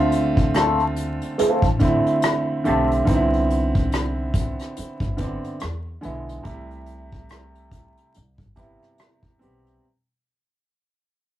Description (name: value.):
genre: R&B, neo-soul.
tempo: 71 BPM.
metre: 4/4.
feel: swing 60% on 16ths.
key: C major.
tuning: A4 = 442 Hz.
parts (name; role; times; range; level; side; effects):
clear concert grand piano; accompaniment; 0.0-9.8 s; C3 to G4; -22 LUFS; right 1 dB; none.
upright bass; bass; 0.0-9.8 s; G1 to E2; -28 LUFS; equal; none.
unplugged drum kit; drums; 0.1-9.8 s; hi-hat, kick drum, rim click; -23 LUFS; equal; none.
electric guitar through a small old amp; second line; 0.5-2.9 s; A3 to A4; -20 LUFS; left 1 dB; wah.
room: moderate booth ambience, RT60 0.2 s.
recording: rough rehearsal-room recording, vinyl crackle.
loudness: -19 LUFS.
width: side -13 dB against mid.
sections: 0.0-9.8 A section.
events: fade-out 0.0-9.8.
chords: 0.0 Dm7; 3.1 Cmaj9; 5.6 E7; 6.4 Am7/C; 8.1 Cmaj7.